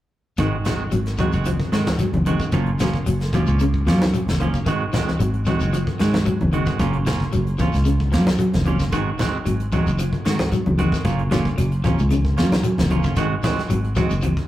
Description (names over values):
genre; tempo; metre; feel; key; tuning
afrobeat; 113 BPM; 4/4; straight; Ab mixolydian; A4 = 440 Hz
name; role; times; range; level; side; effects
clean electric guitar; arpeggios; 0.4-14.4 s; Db3 to Gb3; -27 LUFS; left 2 dB; none
clean electric guitar; stabs; 0.4-14.1 s; Eb3 to Gb4; -27 LUFS; right 4 dB; spring reverb
fingered electric bass; bass; 0.4-14.4 s; Gb1 to Ab2; -21 LUFS; equal; none
soft brush drum kit; drums; 0.4-14.5 s; hi-hat, kick drum, snare drum; -27 LUFS; equal; none
shekere; percussion; 0.4-14.4 s; none; -30 LUFS; left 1 dB; none
congas; percussion; 0.7-14.4 s; none; -25 LUFS; left 1 dB; none
claves; percussion; 8.9-14.4 s; none; -41 LUFS; right 4 dB; none
room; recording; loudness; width
wet small room reverb, RT60 0.5 s; rough rehearsal-room recording, tube saturation; -18 LUFS; side -14 dB against mid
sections
0.4-14.5 A section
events
none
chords
0.4 Ab7; 2.5 Gbmaj7; 4.7 Ab7; 6.8 Gbmaj7; 8.9 Ab7; 11.1 Gbmaj7; 13.2 Ab7